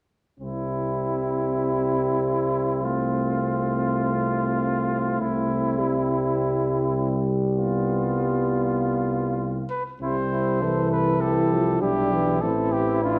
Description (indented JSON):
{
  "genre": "classical, brass quintet",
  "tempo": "100 BPM",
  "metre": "4/4",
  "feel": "rubato",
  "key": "C major",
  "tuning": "A4 = 440 Hz",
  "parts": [
    { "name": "warm flugelhorn", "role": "second line", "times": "0.4-13.2 s", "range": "E4 to A4", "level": "-31 LUFS", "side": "equal", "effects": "none" },
    { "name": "mellow euphonium", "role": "accompaniment", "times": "0.4-13.2 s", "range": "E3 to A3", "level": "-29 LUFS", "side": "equal", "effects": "none" },
    { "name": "warm French horn", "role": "accompaniment", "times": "0.4-13.2 s", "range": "B3 to E4", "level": "-32 LUFS", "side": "equal", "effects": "none" },
    { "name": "mellow tuba", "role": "bass", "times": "0.4-13.2 s", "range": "A1 to C2", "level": "-30 LUFS", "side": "equal", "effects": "none" },
    { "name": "mellow trumpet", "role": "melody", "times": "9.7-13.2 s", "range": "F4 to C5", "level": "-29 LUFS", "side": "equal", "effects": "none" }
  ],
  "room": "moderate recital hall reverb, RT60 1.4 s",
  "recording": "worn, warbling old tape, cassette tape, warbly pitch drift",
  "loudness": "-24 LUFS",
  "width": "mono",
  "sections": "0.4-10.0 A section; 10.0-13.2 B section",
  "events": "none",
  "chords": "0.4 C; 2.8 F/C; 5.2 C; 7.6 G7/C; 10.0 C; 12.4 Am7"
}